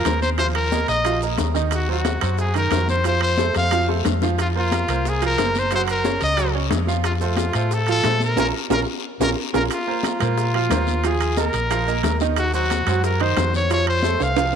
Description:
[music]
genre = latin, salsa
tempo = 180 BPM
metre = 4/4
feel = straight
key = Bb minor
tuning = A4 = 440 Hz
[part]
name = brilliant trumpet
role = melody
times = 0.0-14.6 s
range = F4 to F5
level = -23 LUFS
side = left 1 dB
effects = none
[part]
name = bright upright piano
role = accompaniment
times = 0.0-14.5 s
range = Eb3 to Gb5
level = -25 LUFS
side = right 10 dB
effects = none
[part]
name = hollow-body short-scale fingered electric bass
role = bass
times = 0.0-14.6 s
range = Gb1 to Bb2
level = -23 LUFS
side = left 1 dB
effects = none
[part]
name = bongos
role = percussion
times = 0.1-14.5 s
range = none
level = -29 LUFS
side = left 14 dB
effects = none
[part]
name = congas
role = percussion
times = 0.1-14.6 s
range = none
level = -31 LUFS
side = left 2 dB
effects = none
[part]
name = guiro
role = percussion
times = 0.1-14.6 s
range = none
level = -34 LUFS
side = left 16 dB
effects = none
[part]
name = maracas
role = percussion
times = 0.1-14.5 s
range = none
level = -40 LUFS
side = right 15 dB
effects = none
[part]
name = timbales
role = percussion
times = 0.1-14.6 s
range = none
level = -29 LUFS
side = right 13 dB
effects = none
[sound]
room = moderate plate reverb, RT60 2.6 s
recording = 1960s-style stereo with parts hard left and right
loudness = -18 LUFS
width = side -7 dB against mid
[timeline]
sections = 0.0-9.7 A section; 9.7-14.6 A section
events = drum fill 3.6-4.4, 8.4-9.7, 14.2-14.6; band accent 8.4-9.7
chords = 0.4 Ebsus2; 1.7 Cdim/Eb; 3.1 F; 4.4 Fsus4; 5.7 Gb5; 7.0 F; 8.4 Bbm; 9.7 Bbsus2; 11.0 Ebsus2; 12.4 Cdim/Eb; 13.7 F

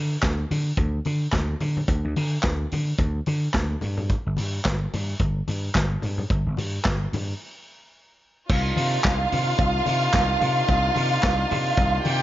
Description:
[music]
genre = disco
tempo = 109 BPM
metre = 4/4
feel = swing 56% on 16ths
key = unclear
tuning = A4 = 444 Hz
[part]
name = vintage slap bass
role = bass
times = 0.0-12.2 s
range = G1 to D3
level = -25 LUFS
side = equal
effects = none
[part]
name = vintage drum kit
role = drums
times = 0.2-12.2 s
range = crash cymbal, handclaps, hi-hat, kick drum, snare drum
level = -26 LUFS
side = equal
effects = none
[part]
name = congas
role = percussion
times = 0.2-12.2 s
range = none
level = -33 LUFS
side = left 3 dB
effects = none
[part]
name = rich studio violin section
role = second line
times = 8.5-12.2 s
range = F4 to G5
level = -23 LUFS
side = right 1 dB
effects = none
[part]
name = muted French horn section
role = sustained chords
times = 8.5-12.2 s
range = C3 to F4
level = -29 LUFS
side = right 1 dB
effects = none
[sound]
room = light reverb, small room ambience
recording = nothing above 7.5 kHz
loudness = -21 LUFS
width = side -14 dB against mid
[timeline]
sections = 0.0-8.5 A section; 8.5-12.2 B section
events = break 7.4-8.5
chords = 0.0 N.C.; 8.5 Cm11

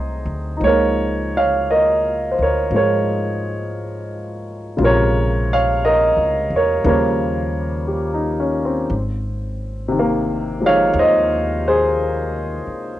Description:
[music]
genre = jazz ballad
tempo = 58 BPM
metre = 4/4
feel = swing 68% on 8ths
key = Ab major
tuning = A4 = 440 Hz
[part]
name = warm grand piano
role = accompaniment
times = 0.0-13.0 s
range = C3 to F5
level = -17 LUFS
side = equal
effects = cassette tape, plate reverb
[part]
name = upright bass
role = bass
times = 0.0-12.7 s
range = Ab1 to Ab2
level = -24 LUFS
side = equal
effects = none
[sound]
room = moderate booth ambience, RT60 0.2 s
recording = home recording on cassette, nothing above 10.9 kHz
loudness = -16 LUFS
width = side -13 dB against mid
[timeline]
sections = 0.0-13.0 A section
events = none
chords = 0.0 Ab7b9; 0.6 Db6; 4.8 Bbm7; 6.8 Eb7; 8.9 Ab

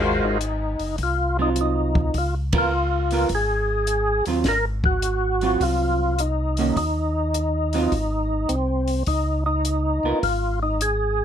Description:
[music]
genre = soul jazz organ trio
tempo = 104 BPM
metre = 4/4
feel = swing 67% on 8ths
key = Ab mixolydian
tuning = A4 = 440 Hz
[part]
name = percussive tonewheel organ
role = melody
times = 0.0-11.2 s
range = Ab3 to C5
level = -23 LUFS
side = equal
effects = slow rotary speaker, overdrive, chorus vibrato
[part]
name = mellow tonewheel organ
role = bass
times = 0.0-11.2 s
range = Gb1 to Eb2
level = -25 LUFS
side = equal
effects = slow rotary speaker
[part]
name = compact cocktail drum kit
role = drums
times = 0.4-11.0 s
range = hi-hat, kick drum, ride cymbal, snare drum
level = -27 LUFS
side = left 1 dB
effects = none
[part]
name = vintage hollow-body jazz guitar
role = accompaniment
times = 1.4-10.2 s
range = Eb3 to Bb4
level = -24 LUFS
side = right 5 dB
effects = none
[sound]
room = light reverb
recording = none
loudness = -20 LUFS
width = side -9 dB against mid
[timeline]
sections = 0.0-11.2 A section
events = band accent 2.4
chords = 0.0 Ab13; 2.1 Db13; 4.5 Ab13; 6.8 Ebm; 7.9 Ab; 9.1 Dbadd9

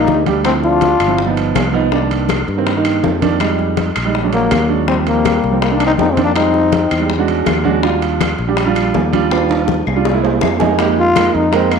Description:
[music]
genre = Afro-Cuban jazz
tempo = 162 BPM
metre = 4/4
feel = straight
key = unclear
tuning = A4 = 440 Hz
[part]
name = growling trombone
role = melody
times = 0.0-1.3, 4.3-7.1, 11.0-11.8 s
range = Bb3 to F4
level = -16 LUFS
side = left 2 dB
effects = none
[part]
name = clear trombone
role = second line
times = 0.0-1.2, 4.3-7.1 s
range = F#3 to D4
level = -22 LUFS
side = left 9 dB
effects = none
[part]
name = warm grand piano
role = accompaniment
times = 0.0-11.7 s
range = Eb3 to G#5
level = -17 LUFS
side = right 7 dB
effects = none
[part]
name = fingered electric bass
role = bass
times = 0.0-11.8 s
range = G1 to G2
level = -20 LUFS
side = left 2 dB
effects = none
[part]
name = bongos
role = percussion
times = 0.1-11.7 s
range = none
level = -24 LUFS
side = left 12 dB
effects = none
[part]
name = congas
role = percussion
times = 0.1-11.8 s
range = none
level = -24 LUFS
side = left 10 dB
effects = none
[part]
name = timbales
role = percussion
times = 0.1-11.8 s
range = none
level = -23 LUFS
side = right 7 dB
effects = none
[part]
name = claves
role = percussion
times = 0.5-11.8 s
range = none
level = -28 LUFS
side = left 13 dB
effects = none
[sound]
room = wet echo chamber reverb, RT60 1.4 s, small room ambience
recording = 1960s-style stereo with parts hard left and right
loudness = -12 LUFS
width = side -6 dB against mid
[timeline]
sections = 0.0-10.8 A section; 10.8-11.8 B section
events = drum fill 9.3-10.8; grand piano fill 10.1-10.8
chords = 0.5 Dm9; 1.2 Gaug7; 1.9 Cm7; 3.4 Fm9; 4.1 Bbaug7; 4.9 Eb69; 5.6 Cm9; 6.4 Fm9; 7.1 E13; 7.8 Ebmaj7; 10.1 C7alt; 10.8 Fm11

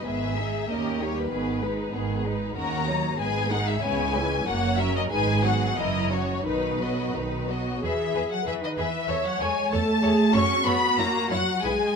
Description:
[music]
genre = quick classical-period movement for string orchestra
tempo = 86-97 BPM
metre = 2/4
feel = rubato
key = B major, E major from 7.8 s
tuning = A4 = 440 Hz
[part]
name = rich studio violin section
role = melody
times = 0.0-12.0 s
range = B4 to C#6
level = -28 LUFS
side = left 5 dB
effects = none
[part]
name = rich studio violin section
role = second line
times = 0.0-11.7 s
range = B3 to D#5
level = -32 LUFS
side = left 3 dB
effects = none
[part]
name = dark studio viola section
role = accompaniment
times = 0.0-12.0 s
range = D#3 to C#5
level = -29 LUFS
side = right 2 dB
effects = none
[part]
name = warm studio cello section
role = bass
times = 0.1-12.0 s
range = D#2 to C#4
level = -30 LUFS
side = right 2 dB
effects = none
[part]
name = warm studio double bass section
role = bass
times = 0.1-11.7 s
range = F#1 to F#2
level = -31 LUFS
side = right 4 dB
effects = none
[sound]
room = light reverb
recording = close, detailed microphones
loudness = -23 LUFS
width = side -6 dB against mid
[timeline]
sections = 0.0-7.8 A section; 7.8-12.0 B section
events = none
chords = 0.1 G#m; 0.7 D#7; 1.3 G#m; 2.6 D#m7; 3.2 G#m; 3.8 C#m7; 4.5 F#; 5.1 G#m7; 5.8 F#7; 6.5 B; 7.8 E; 9.1 A/E; 10.3 F#m; 11.0 F#7

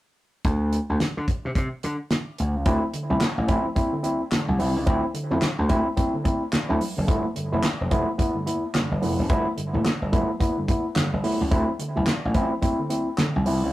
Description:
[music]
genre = funk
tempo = 108 BPM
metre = 4/4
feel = swing 60% on 16ths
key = D dorian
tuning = A4 = 440 Hz
[part]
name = gritty slap bass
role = bass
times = 0.4-13.7 s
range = F1 to D3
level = -25 LUFS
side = equal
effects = overdrive
[part]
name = damped 70s drum kit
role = drums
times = 0.4-13.6 s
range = handclaps, hi-hat, kick drum, snare drum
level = -24 LUFS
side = equal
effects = none
[part]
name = overdriven tine electric piano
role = stabs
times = 2.7-13.7 s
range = G2 to E4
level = -25 LUFS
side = equal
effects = analog delay
[part]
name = congas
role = percussion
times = 2.7-13.6 s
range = none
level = -35 LUFS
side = right 1 dB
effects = none
[sound]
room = moderate studio reverb, RT60 0.5 s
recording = rough rehearsal-room recording, tube saturation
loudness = -22 LUFS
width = side -16 dB against mid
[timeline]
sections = 0.4-2.7 A section; 2.7-13.7 B section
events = none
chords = 0.4 N.C.; 2.7 Dm9; 7.1 G13; 11.5 Dm9

